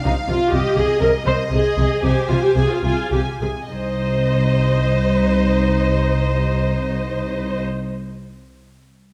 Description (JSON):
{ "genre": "quick classical-period movement for symphony orchestra", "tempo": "67-85 BPM (dotted quarters)", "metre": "6/8", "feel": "rubato", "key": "C minor", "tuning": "A4 = 439 Hz", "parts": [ { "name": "warm studio violin section", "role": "melody", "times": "0.0-7.6 s", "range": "Eb5 to Ab5", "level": "-34 LUFS", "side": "equal", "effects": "none" }, { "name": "warm chamber violin section", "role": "second line", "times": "0.0-7.6 s", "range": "Eb4 to F5", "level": "-30 LUFS", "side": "equal", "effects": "none" }, { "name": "warm symphonic viola section", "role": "accompaniment", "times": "0.0-7.6 s", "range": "Eb4 to C5", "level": "-23 LUFS", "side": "equal", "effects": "none" }, { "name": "rich chamber double bass section", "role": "bass", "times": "0.0-7.6 s", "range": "C2", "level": "-24 LUFS", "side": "equal", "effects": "none" }, { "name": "warm chamber cello section", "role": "bass", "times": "0.0-7.6 s", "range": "C2 to C3", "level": "-25 LUFS", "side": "equal", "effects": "none" } ], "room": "wet scoring stage reverb, RT60 1.8 s", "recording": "dark, warm production", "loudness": "-19 LUFS", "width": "mono", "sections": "0.0-3.7 A section; 3.7-7.2 B section", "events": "slowing down 0.0-3.7", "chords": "0.0 Cmadd11; 0.5 Cm; 2.0 Fmadd9/C; 3.7 Cm", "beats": "| 0.53 1.26 | 2.03 2.84 | 3.71 4.58 | 5.45 6.32" }